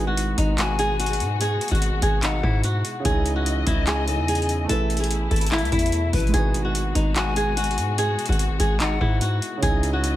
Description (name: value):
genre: hip hop, trap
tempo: 146 BPM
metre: 4/4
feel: half-time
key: G# phrygian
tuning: A4 = 439 Hz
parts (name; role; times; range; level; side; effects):
- flamenco guitar; melody; 0.0-10.2 s; D#4 to A4; -26 LUFS; equal; low-pass filter, tape echo
- dark grand piano; accompaniment; 0.0-10.2 s; C#3 to E5; -31 LUFS; right 5 dB; low-pass filter
- dark symphonic string section; sustained chords; 0.0-10.2 s; B2 to D#5; -32 LUFS; left 3 dB; none
- distorted 808-style bass; bass; 0.0-10.2 s; G#1 to G#2; -25 LUFS; equal; distortion
- booming analog drum machine; drums; 0.2-10.1 s; handclaps, hi-hat, kick drum; -24 LUFS; equal; none
- breathy hollow pan flute; second line; 0.6-9.2 s; B4 to G#5; -32 LUFS; left 8 dB; tape echo
room: small room ambience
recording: none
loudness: -20 LUFS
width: side -14 dB against mid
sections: 0.0-10.2 A section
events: none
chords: 0.0 G#m7; 3.0 C#madd9; 4.7 Asus2; 6.3 G#m7; 9.6 C#madd9